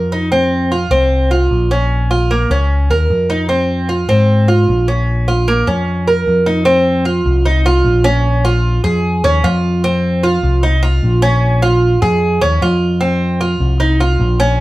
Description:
latin, Cuban son and guajira; 151 BPM; 4/4; straight; F minor; A4 = 445 Hz
Cuban tres; arpeggios; 0.0-14.6 s; Bb3 to Bb4; -15 LUFS; right 1 dB
picked electric bass; bass; 0.0-14.6 s; Bb1 to Ab2; -14 LUFS; equal
moderate large studio reverb, RT60 0.8 s; heard from further back in the room; -11 LUFS; side -18 dB against mid
0.0-6.7 A section; 6.7-14.6 B section
0.3 F5; 1.9 Bbm; 3.5 Fm; 5.1 Bbm; 6.7 F5; 8.3 Bbm7; 9.8 F5; 11.4 Bbm7; 13.0 F5

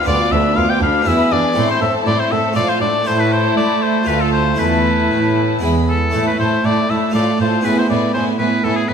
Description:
classical, baroque-style concerto movement with solo episodes; 120 BPM; 3/4; straight; A minor; A4 = 440 Hz
bright oboe; melody; 0.0-8.9 s; G#4 to G5; -19 LUFS; left 2 dB
rich chamber violin section; melody; 0.0-8.9 s; F5 to D6; -26 LUFS; left 6 dB
rich chamber violin section; second line; 0.0-8.9 s; D4 to A4; -21 LUFS; left 3 dB
harpsichord; accompaniment; 0.0-8.9 s; D2 to A4; -20 LUFS; right 2 dB
rich chamber viola section; accompaniment; 0.0-8.9 s; F3 to D4; -23 LUFS; right 3 dB
warm chamber cello section; bass; 0.1-8.9 s; D2 to A3; -21 LUFS; right 3 dB
wet recital hall reverb, RT60 1.7 s; -14 LUFS; side -7 dB against mid
0.0-6.1 A section; 6.1-8.9 A section
0.1 Bdim/D; 1.1 E7; 1.6 Am; 2.6 Dm/A; 3.1 A5; 4.1 Dm; 4.6 Esus4; 5.6 E; 6.1 A5; 7.1 Dm/A; 7.6 E/A

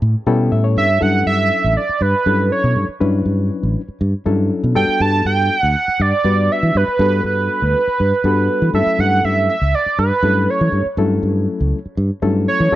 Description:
jazz; 120 BPM; 4/4; straight; A4 = 440 Hz
fingered electric bass; bass; 0.0-12.8 s; A1 to E3; -17 LUFS; equal
barky reed electric piano; accompaniment; 0.3-12.8 s; F#3 to G5; -21 LUFS; left 4 dB; overdrive
lead with added fifth; melody; 0.8-12.8 s; B4 to A5; -17 LUFS; right 3 dB; chorus, slapback echo
digital ambience; dry, close 1970s-style studio recording; -14 LUFS; side -14 dB against mid
0.0-1.0 A section; 1.0-12.8 B section
reed electric piano fill 0.0-1.0
0.0 A7; 1.0 Dmaj7; 4.8 Gmaj9; 8.7 F#m7

